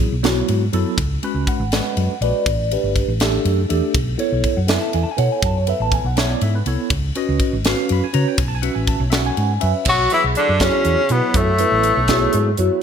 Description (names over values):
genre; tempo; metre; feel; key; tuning
electric jazz fusion; 81 BPM (dotted quarters); 6/8; straight; B dorian; A4 = 441 Hz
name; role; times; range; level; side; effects
bright tine electric piano; accompaniment; 0.0-12.8 s; F#3 to B5; -21 LUFS; right 1 dB; medium stereo tremolo, phaser
hollow-body short-scale fingered electric bass; bass; 0.0-12.7 s; G1 to C#3; -20 LUFS; equal; none
crisp fusion drum kit; drums; 0.2-12.7 s; crash cymbal, hi-hat, kick drum, ride cymbal, snare drum; -22 LUFS; equal; gated reverb
clear tenor saxophone; melody; 9.9-12.6 s; A3 to F#4; -18 LUFS; left 3 dB; ping-pong delay
bright tenor saxophone; second line; 9.9-12.6 s; A2 to F#3; -23 LUFS; right 7 dB; none
room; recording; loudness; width
light reverb, small room ambience; bright 1980s-style digital production; -16 LUFS; side -8 dB against mid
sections
0.0-9.9 A section; 9.9-12.8 B section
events
none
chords
0.0 B7sus4; 1.0 C#7sus4; 2.5 A9sus4; 4.0 B9sus4; 6.9 C#9sus4; 8.4 B9sus4